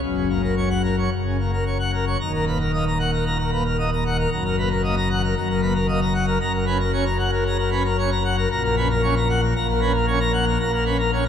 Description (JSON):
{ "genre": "classical, organ toccata", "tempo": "114 BPM", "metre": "4/4", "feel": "straight", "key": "Eb minor", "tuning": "A4 = 440 Hz", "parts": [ { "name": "pipe organ, plenum", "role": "solo", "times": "0.0-11.3 s", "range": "Eb1 to Bb5", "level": "-19 LUFS", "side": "left 1 dB", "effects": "none" } ], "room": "wet cathedral reverb, RT60 5.3 s", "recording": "minimal, uncompressed stereo recording", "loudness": "-19 LUFS", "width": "side -8 dB against mid", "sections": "0.0-2.2 A section; 2.2-11.3 B section", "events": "none", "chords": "0.0 F#; 2.2 Ebm; 4.3 Ebm/Gb; 6.4 Gb; 8.5 Gb/Bb; 10.6 A#m" }